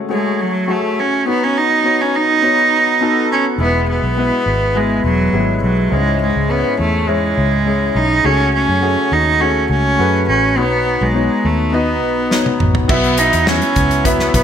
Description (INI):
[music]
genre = piano-driven pop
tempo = 103 BPM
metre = 4/4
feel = straight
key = unclear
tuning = A4 = 440 Hz
[part]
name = clear concert grand piano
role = accompaniment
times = 0.0-14.4 s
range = G#2 to E5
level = -18 LUFS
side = left 4 dB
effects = analog chorus
[part]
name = clear cello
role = melody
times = 0.1-14.4 s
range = F#3 to D#4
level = -15 LUFS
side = right 2 dB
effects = none
[part]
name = vintage muted fingered electric bass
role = bass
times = 3.6-14.4 s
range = E1 to F#2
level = -19 LUFS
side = equal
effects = none
[part]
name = natural country drum kit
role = drums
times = 12.3-14.4 s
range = crash cymbal, hi-hat, kick drum, snare drum, toms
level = -17 LUFS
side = equal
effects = gated reverb
[part]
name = muted French horn section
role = sustained chords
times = 12.9-14.4 s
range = F#3 to E4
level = -26 LUFS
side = right 3 dB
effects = none
[sound]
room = light reverb, small room ambience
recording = bright 1980s-style digital production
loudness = -13 LUFS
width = side -8 dB against mid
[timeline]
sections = 0.0-12.9 A section; 12.9-14.4 B section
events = drum fill 12.3-12.9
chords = 0.0 F#madd9/C#; 1.3 Badd9; 3.6 E; 5.9 C#m; 8.2 F#madd9/C#; 10.6 Badd9; 12.9 Bsus4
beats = 0.10 0.68 | 1.26 1.84 2.43 3.01 | 3.59 4.17 4.75 5.34 | 5.92 6.50 7.08 7.66 | 8.24 8.83 9.41 9.99 | 10.57 11.15 11.73 12.31 | 12.89 13.47 14.06